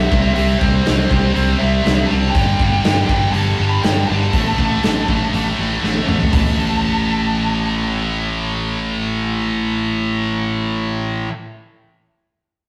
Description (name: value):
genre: hard rock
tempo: 121 BPM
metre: 4/4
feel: straight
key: unclear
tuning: A4 = 443 Hz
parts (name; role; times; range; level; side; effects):
- smooth overdriven lead guitar; melody; 0.0-11.1 s; C5 to B5; -26 LUFS; equal; none
- scooped high-gain guitar; riff; 0.0-11.3 s; G2 to C4; -22 LUFS; equal; distortion
- growling fingered electric bass; bass; 0.0-11.3 s; G1 to C2; -22 LUFS; equal; overdrive
- big rock drum kit; drums; 0.1-6.4 s; hi-hat, kick drum, snare drum, toms; -22 LUFS; equal; none
room: moderate stone room reverb, RT60 1.3 s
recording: rough rehearsal-room recording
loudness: -17 LUFS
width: mono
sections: 0.0-6.3 A section; 6.3-10.3 B section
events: drum fill 5.8-6.3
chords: 0.1 C; 2.4 G5; 4.3 A5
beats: | 0.37 0.87 1.36 1.86 | 2.35 2.85 3.35 3.85 | 4.34 4.84 5.34 5.84 | 6.33 6.83 7.33 7.83 | 8.33 8.83 9.32 9.82